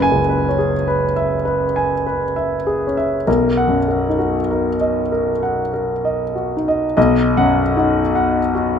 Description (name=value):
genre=classical, impressionist solo piano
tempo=48-53 BPM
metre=3/4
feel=rubato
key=B major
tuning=A4 = 439 Hz
part: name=warm concert grand piano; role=solo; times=0.0-8.8 s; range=F#1 to G#5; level=-15 LUFS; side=left 1 dB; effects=none
room=moderate recital hall reverb, RT60 1.4 s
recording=close, detailed microphones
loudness=-15 LUFS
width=side -7 dB against mid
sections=0.0-7.0 A section; 7.0-8.8 A section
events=none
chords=0.0 F#9sus4; 3.3 Bmaj7; 7.0 B